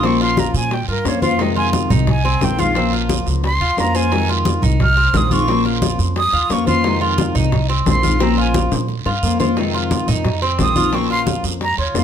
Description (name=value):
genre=latin, Cuban son and guajira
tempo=176 BPM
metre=4/4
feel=straight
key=unclear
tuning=A4 = 441 Hz
part: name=jazz flute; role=melody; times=0.0-8.5, 10.6-12.0 s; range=Bb4 to F6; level=-20 LUFS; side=right 1 dB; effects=none
part: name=nylon-string guitar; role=accompaniment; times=0.0-12.0 s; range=C3 to C5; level=-20 LUFS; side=left 5 dB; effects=none
part: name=Cuban tres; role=arpeggios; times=0.0-12.0 s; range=C4 to F4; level=-23 LUFS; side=right 3 dB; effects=none
part: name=upright bass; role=bass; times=0.0-12.0 s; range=Bb1 to Bb2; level=-20 LUFS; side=right 1 dB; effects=none
part: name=bongos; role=percussion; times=0.0-12.0 s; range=none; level=-26 LUFS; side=left 7 dB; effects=none
part: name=congas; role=percussion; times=0.0-12.0 s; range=none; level=-22 LUFS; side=equal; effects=none
part: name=guiro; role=percussion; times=0.0-12.0 s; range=none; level=-29 LUFS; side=right 10 dB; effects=none
room=light reverb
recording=close, detailed microphones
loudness=-14 LUFS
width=side -8 dB against mid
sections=0.0-12.0 A section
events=flute solo 0.0-12.0; drum fill 8.2-9.6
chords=0.0 Bbmadd9; 1.4 Fm7; 2.8 Bbmadd9; 4.1 Fm7; 5.5 Bbmadd9; 6.8 Fm7; 8.2 Bbmadd9; 9.6 Fm7; 10.9 Bbmadd9